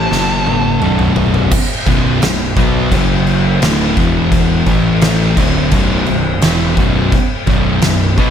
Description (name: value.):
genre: stoner and doom metal.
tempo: 86 BPM.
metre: 4/4.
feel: straight.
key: B minor.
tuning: A4 = 441 Hz.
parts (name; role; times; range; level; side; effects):
fuzz lead guitar; melody; 0.0-1.5 s; A5; -20 LUFS; right 2 dB; distortion, digital delay.
sludgy distorted guitar; riff; 0.0-8.3 s; B1 to B3; -20 LUFS; equal; overdrive.
thick fuzz guitar; riff; 0.0-8.3 s; B1 to B3; -18 LUFS; left 8 dB; distortion.
thick fuzz guitar; riff; 0.0-8.3 s; B1 to B3; -19 LUFS; right 8 dB; distortion.
fuzz picked electric bass; bass; 0.0-8.3 s; B0 to B1; -19 LUFS; equal; overdrive.
oversized low-tuned drum kit; drums; 0.1-8.3 s; crash cymbal, kick drum, snare drum, toms; -15 LUFS; equal; none.
room: light reverb, small room ambience.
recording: none.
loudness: -11 LUFS.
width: side -8 dB against mid.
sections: 0.0-1.5 A section; 1.5-8.3 B section.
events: lead electric guitar solo 0.0-1.5; drum fill 0.1-1.5.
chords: 0.1 F#5; 0.8 B5; 2.9 F#5; 3.6 D5; 4.0 E5; 4.7 A5; 5.4 Bm.